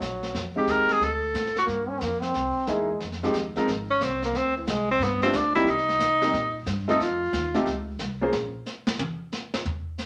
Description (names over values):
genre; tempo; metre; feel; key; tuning
jazz, small-group swing and bop; 180 BPM; 4/4; swing 64% on 8ths; F minor; A4 = 441 Hz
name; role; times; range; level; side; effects
bright trombone; second line; 0.0-3.0 s; Gb3 to Db4; -31 LUFS; equal; none
upright bass; bass; 0.0-8.5 s; Ab1 to C3; -37 LUFS; equal; none
vintage brush drum kit; drums; 0.0-10.1 s; brushed snare drum, hi-hat, snare drum, toms; -35 LUFS; equal; none
warm tenor saxophone; melody; 0.6-1.6, 3.9-7.6 s; E3 to Bb4; -26 LUFS; equal; none
clear concert grand piano; accompaniment; 0.6-8.3 s; F3 to C5; -28 LUFS; equal; none
room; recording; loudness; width
wet small room reverb, RT60 0.6 s; none; -26 LUFS; mono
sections
0.0-3.0 A section; 3.0-10.1 B section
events
tenor saxophone solo 3.0-10.1; drum solo 8.3-10.1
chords
0.3 Fm9; 1.0 D5; 1.7 Bbm6; 2.3 C7alt; 3.0 Fm7; 4.3 Cadd9; 5.0 G7; 5.7 Cm7; 7.0 F7(no3); 8.3 N.C.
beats
0.01 | 0.35 0.68 1.01 1.35 | 1.68 2.01 2.35 2.68 | 3.01 3.34 3.68 4.01 | 4.34 4.67 5.01 5.34 | 5.67 6.00 6.34 6.67 | 7.00 7.33 7.67 8.00 | 8.33 8.66 8.99 9.33 | 9.66 9.99